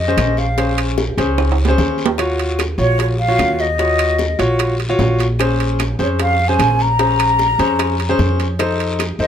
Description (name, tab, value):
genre	Afro-Cuban jazz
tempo	150 BPM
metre	4/4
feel	straight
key	Bb minor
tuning	A4 = 441 Hz
part	breathy mellow silver concert flute	melody	0.0-9.3 s	Db5 to Bb5	-17 LUFS	left 1 dB	none
part	upright bass	bass	0.0-9.3 s	Bb1 to F2	-19 LUFS	equal	none
part	clear concert grand piano	accompaniment	0.1-9.3 s	Db4 to Db5	-19 LUFS	left 1 dB	none
part	bongos	percussion	0.2-9.3 s	none	-26 LUFS	left 4 dB	none
part	claves	percussion	0.2-9.2 s	none	-32 LUFS	equal	none
part	guiro	percussion	0.2-9.3 s	none	-32 LUFS	left 3 dB	none
part	timbales	percussion	0.2-9.2 s	none	-23 LUFS	right 9 dB	none
room	light reverb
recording	close, detailed microphones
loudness	-14 LUFS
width	side -9 dB against mid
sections	0.0-9.3 A section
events	drum fill 1.4-2.2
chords	0.0 Bbm7; 2.2 Ebm7; 5.4 Bbm7; 8.6 F7